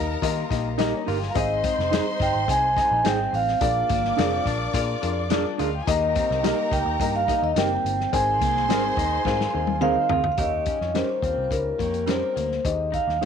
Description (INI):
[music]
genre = uptempo 1960s-style soul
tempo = 106 BPM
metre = 4/4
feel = straight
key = Ab major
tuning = A4 = 440 Hz
[part]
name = mellow saxophone section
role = second line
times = 0.0-12.5 s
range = Db3 to C5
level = -36 LUFS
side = right 12 dB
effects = none
[part]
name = warm studio string section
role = second line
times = 0.0-10.1 s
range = Db4 to D6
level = -34 LUFS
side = left 3 dB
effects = tape echo
[part]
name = electric guitar through a small old amp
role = riff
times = 0.0-13.2 s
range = Bb3 to Ab4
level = -33 LUFS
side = left 13 dB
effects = none
[part]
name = vintage muted picked electric bass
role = bass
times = 0.0-13.3 s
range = F1 to Eb3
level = -29 LUFS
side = right 1 dB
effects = none
[part]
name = dark upright piano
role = accompaniment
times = 0.2-13.3 s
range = Ab2 to Eb5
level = -30 LUFS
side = left 11 dB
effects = none
[part]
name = vintage drum kit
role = drums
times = 0.2-13.3 s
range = hi-hat, kick drum, snare drum, toms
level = -29 LUFS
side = left 4 dB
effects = none
[part]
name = mellow electric guitar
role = stabs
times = 0.8-13.3 s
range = C4 to C5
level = -30 LUFS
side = right 16 dB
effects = tape echo
[part]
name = vibraphone with soft mallets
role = melody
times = 1.3-13.3 s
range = Bb4 to Ab5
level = -24 LUFS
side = right 2 dB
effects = none
[sound]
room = light reverb, small room ambience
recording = 1960s-style stereo with parts hard left and right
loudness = -21 LUFS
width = side -7 dB against mid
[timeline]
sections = 0.0-10.4 A section; 10.4-13.3 B section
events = drum fill 9.3-10.4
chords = 0.0 Eb; 1.4 Ab; 3.6 Bb7; 5.9 Eb; 8.1 Abadd9; 10.4 Eb7; 12.7 Abmaj7